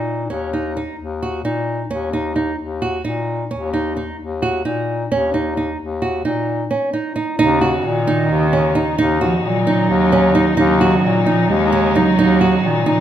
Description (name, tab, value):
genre	contemporary instrumental, chamber music in an uneven meter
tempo	262 BPM (eighths)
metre	7/8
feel	straight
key	Eb minor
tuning	A4 = 440 Hz
part	nylon-string guitar	arpeggios	0.0-13.0 s	Db4 to Gb4	-19 LUFS	right 3 dB	none
part	warm bass clarinet	bass	0.0-13.0 s	Eb2 to Bb2	-20 LUFS	left 4 dB	none
part	dark cello	second line	7.4-13.0 s	Db3 to Ab3	-18 LUFS	right 4 dB	none
part	muted chamber string section	sustained chords	7.4-13.0 s	Db3 to Eb4	-24 LUFS	left 2 dB	none
room	moderate recital hall reverb, RT60 1.6 s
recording	none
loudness	-15 LUFS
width	side -10 dB against mid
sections	0.0-7.4 A section; 7.4-13.0 B section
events	none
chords	0.0 Eb7(no3); 7.4 Ebm7